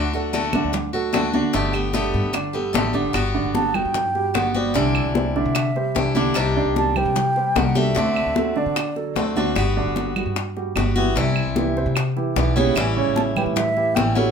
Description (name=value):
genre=latin, Cuban son and guajira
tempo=150 BPM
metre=4/4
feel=straight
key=G major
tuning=A4 = 440 Hz
part: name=picked swing-style acoustic guitar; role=accompaniment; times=0.0-14.3 s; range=B2 to G4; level=-24 LUFS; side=left 3 dB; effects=none
part: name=dark concert grand piano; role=arpeggios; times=0.0-14.3 s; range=C3 to D5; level=-25 LUFS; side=right 6 dB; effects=none
part: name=upright bass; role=bass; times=0.0-14.3 s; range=G1 to D3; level=-25 LUFS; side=left 2 dB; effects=none
part: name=congas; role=percussion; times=0.1-14.3 s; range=none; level=-28 LUFS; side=equal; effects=none
part: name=bongos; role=percussion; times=0.3-14.3 s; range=none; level=-27 LUFS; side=left 7 dB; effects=none
part: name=claves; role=percussion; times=0.5-14.2 s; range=none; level=-30 LUFS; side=right 6 dB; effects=none
part: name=breathy mellow concert flute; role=melody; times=3.6-9.4, 13.2-14.3 s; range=D5 to A5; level=-24 LUFS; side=right 2 dB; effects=none
room=moderate studio reverb, RT60 0.5 s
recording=minimal, uncompressed stereo recording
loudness=-18 LUFS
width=side -6 dB against mid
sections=0.0-3.1 A section; 3.1-14.3 B section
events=none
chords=0.0 D; 1.5 Gadd9; 3.1 Gmaj7; 4.8 Cadd9; 6.4 Cmadd9; 8.0 D7; 9.6 Gmaj7; 11.2 Cmaj7; 12.8 A7